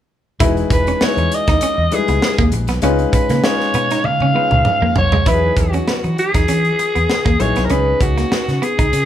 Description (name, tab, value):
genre	polished 1980s jazz-funk pop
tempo	99 BPM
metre	4/4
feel	swing 54% on 16ths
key	unclear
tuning	A4 = 440 Hz
part	clear grand piano	accompaniment	0.4-9.1 s	D#3 to B4	-22 LUFS	left 5 dB	none
part	electric guitar at the edge of break-up	riff	0.4-9.0 s	G#3 to E4	-23 LUFS	right 2 dB	none
part	vintage muted fingered electric bass	bass	0.4-9.1 s	E1 to E3	-20 LUFS	equal	none
part	tight funk drum kit	drums	0.4-9.1 s	hi-hat, kick drum, snare drum, toms	-19 LUFS	right 1 dB	none
part	growling alto saxophone	melody	0.7-9.1 s	F#4 to E#5	-18 LUFS	equal	none
room	light reverb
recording	band playing live in one room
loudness	-13 LUFS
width	side -11 dB against mid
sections	0.4-5.3 A section; 5.3-9.1 B section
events	drum fill 4.0-5.3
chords	0.4 Emaj9; 2.8 C#9; 5.3 Emaj9; 7.7 C#7sus2